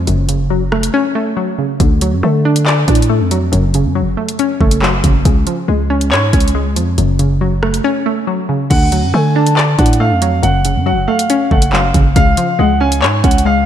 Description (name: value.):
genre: hip hop, drill.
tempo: 139 BPM.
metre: 4/4.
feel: half-time.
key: F# harmonic minor.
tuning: A4 = 442 Hz.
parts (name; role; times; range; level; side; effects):
hollow square pluck; accompaniment; 0.0-13.7 s; F#2 to D5; -16 LUFS; left 1 dB; chorus.
growling 808-style bass; bass; 0.0-13.7 s; F#1 to D3; -15 LUFS; equal; none.
drill drum kit; drums; 0.1-13.4 s; crash cymbal, handclaps, hi-hat, kick drum, rim click; -16 LUFS; equal; none.
dark concert grand piano; melody; 8.7-13.7 s; E#5 to A5; -17 LUFS; right 1 dB; ping-pong delay.
room: moderate lush hall reverb, RT60 2.0 s, digital ambience.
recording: dreamy mix soaked in reverb.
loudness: -11 LUFS.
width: side -10 dB against mid.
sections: 0.0-8.7 A section; 8.7-13.7 B section.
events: drums muted 0.9-1.8; break 7.8-8.7.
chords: 0.1 F#m; 1.8 D; 3.5 F#m; 5.3 C#; 7.0 F#m; 8.7 D; 10.4 F#m; 12.2 C#.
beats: | 0.07 0.51 0.94 1.37 | 1.80 2.23 2.66 3.10 | 3.53 3.96 4.39 4.82 | 5.25 5.68 6.12 6.55 | 6.98 7.41 7.84 8.28 | 8.71 9.14 9.57 10.00 | 10.43 10.87 11.30 11.73 | 12.16 12.59 13.02 13.46.